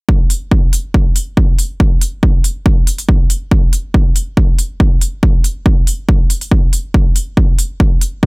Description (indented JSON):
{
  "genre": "driving peak-time techno",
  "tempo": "140 BPM",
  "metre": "4/4",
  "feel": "straight",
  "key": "none",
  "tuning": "none",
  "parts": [
    { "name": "electronic kick drum", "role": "drums", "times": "0.1-8.3 s", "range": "none", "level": "-11 LUFS", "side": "equal", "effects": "overdrive" },
    { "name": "electronic hi-hat", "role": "drums", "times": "0.3-8.1 s", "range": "none", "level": "-19 LUFS", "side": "equal", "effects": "overdrive, sidechain pumping on hats" }
  ],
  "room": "little or no reverb",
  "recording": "none",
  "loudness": "-11 LUFS",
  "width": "side -29 dB against mid",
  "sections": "0.1-8.3 A section",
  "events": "none",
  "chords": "none"
}